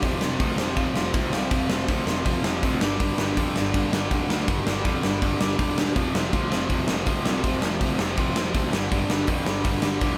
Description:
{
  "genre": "punk rock",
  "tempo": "162 BPM",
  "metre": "4/4",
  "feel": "straight",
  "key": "unclear",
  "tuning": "A4 = 439 Hz",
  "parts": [
    { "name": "cranked stack guitar", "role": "riff", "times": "0.0-10.2 s", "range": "F2 to G3", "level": "-31 LUFS", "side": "equal", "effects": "overdrive" },
    { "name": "distorted electric guitar", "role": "riff", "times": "0.0-10.2 s", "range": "F2 to G3", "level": "-31 LUFS", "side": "equal", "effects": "distortion" },
    { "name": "fuzz picked electric bass", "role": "bass", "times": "0.0-10.2 s", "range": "E1 to F2", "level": "-32 LUFS", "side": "equal", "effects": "overdrive" },
    { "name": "big rock drum kit", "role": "drums", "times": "0.0-10.1 s", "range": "hi-hat, kick drum, snare drum", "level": "-28 LUFS", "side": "equal", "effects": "none" }
  ],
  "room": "moderate studio reverb, RT60 0.8 s",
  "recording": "band playing live in one room",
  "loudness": "-24 LUFS",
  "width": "mono",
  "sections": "0.0-10.2 A section",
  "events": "none",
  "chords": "0.0 F5; 2.8 G5; 6.0 F5; 8.7 G5"
}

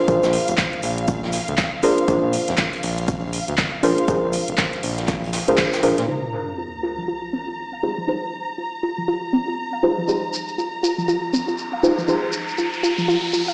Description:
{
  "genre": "deep house",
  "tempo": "120 BPM",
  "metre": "4/4",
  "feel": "swing 60% on 16ths",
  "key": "F dorian",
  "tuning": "A4 = 436 Hz",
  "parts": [
    { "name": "deep mellow chord stab", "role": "stabs", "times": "0.0-13.5 s", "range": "D4 to C5", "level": "-24 LUFS", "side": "equal", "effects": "chorus, tape echo" },
    { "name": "warm symphonic violin section", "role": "texture", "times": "0.0-13.5 s", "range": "F5 to Bb5", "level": "-32 LUFS", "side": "equal", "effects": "sidechain pumping" },
    { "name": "smooth synth bass", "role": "bass", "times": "0.1-6.0 s", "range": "F1 to Bb2", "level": "-28 LUFS", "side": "equal", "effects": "sidechain pumping" },
    { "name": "electronic kick drum", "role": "drums", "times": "0.1-5.7 s", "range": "none", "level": "-26 LUFS", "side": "equal", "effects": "studio reverb" },
    { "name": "house drum kit", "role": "drums", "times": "0.1-6.1 s", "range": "handclaps, hi-hat", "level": "-27 LUFS", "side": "equal", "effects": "studio reverb" },
    { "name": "vintage brush drum kit", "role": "drums", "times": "0.1-6.1 s", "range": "hi-hat, shaker, snare drum", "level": "-35 LUFS", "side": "equal", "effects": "high-pass filter on hats, studio reverb, high-pass filter on snare, high-pass filter on perc, high-pass filter on room" },
    { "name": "sub drop and riser", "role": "sound effects", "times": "6.1-13.5 s", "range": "none", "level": "-33 LUFS", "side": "equal", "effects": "none" },
    { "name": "soft round pluck", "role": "arpeggios", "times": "6.6-13.5 s", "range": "F3 to F5", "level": "-25 LUFS", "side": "equal", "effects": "chorus, sidechain pumping, digital delay" },
    { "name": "shekere", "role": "percussion", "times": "10.1-13.5 s", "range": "none", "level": "-33 LUFS", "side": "equal", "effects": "none" }
  ],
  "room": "wet plate reverb, RT60 1.0 s, small room ambience",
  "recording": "played on a big sound system in a bare room, large studio reverb, small speaker sound",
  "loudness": "-22 LUFS",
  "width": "mono",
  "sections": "0.0-6.1 A section; 6.1-13.5 B section",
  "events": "band accent 5.6; impact 6.1-8.1; filter sweep on synth stab 6.1-13.5; filter sweep on synth arpeggio sound 6.1-13.5; riser 11.0-13.5",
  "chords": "0.0 Bb7; 6.1 Fm9"
}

